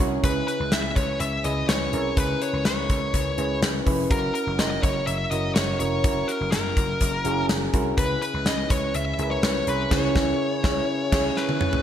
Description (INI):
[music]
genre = 1980s-style pop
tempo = 124 BPM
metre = 4/4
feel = straight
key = C# dorian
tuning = A4 = 439 Hz
[part]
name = soft electric-piano-like synth keys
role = accompaniment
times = 0.0-11.8 s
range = C#3 to C#5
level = -27 LUFS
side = right 1 dB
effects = chorus
[part]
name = vintage slap bass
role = bass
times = 0.0-11.3 s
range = E#1 to C#2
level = -29 LUFS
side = equal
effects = none
[part]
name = fuzz lead guitar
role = melody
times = 0.2-11.8 s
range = A#4 to E5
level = -27 LUFS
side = left 2 dB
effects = distortion
[part]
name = gated 80s drum kit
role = drums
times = 0.2-11.8 s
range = crash cymbal, hi-hat, kick drum, snare drum, toms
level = -25 LUFS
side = equal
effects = gated reverb
[sound]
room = moderate lush hall reverb, RT60 1.6 s, studio reverb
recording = bright 1980s-style digital production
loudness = -21 LUFS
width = side -10 dB against mid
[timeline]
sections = 0.0-11.8 A section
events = band accent 9.9-11.8; drum fill 11.4-11.8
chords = 0.2 C#m7; 4.1 F#7; 8.0 C#m7